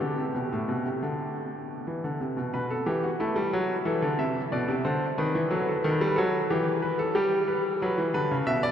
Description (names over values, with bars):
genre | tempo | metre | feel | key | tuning
classical, baroque-style two-part invention for grand piano | 91 BPM | 4/4 | straight | E minor | A4 = 440 Hz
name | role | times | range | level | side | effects
clear concert grand piano | solo | 0.0-8.7 s | A2 to E5 | -25 LUFS | equal | none
room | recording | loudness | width
wet cathedral reverb, RT60 6.0 s | none | -25 LUFS | side -9 dB against mid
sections
0.0-2.5 A section; 2.5-8.7 B section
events
none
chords
0.0 Em (rootless); 2.5 Em/B; 3.9 Cmaj13; 5.2 B7/D#; 6.5 Em; 7.8 Bm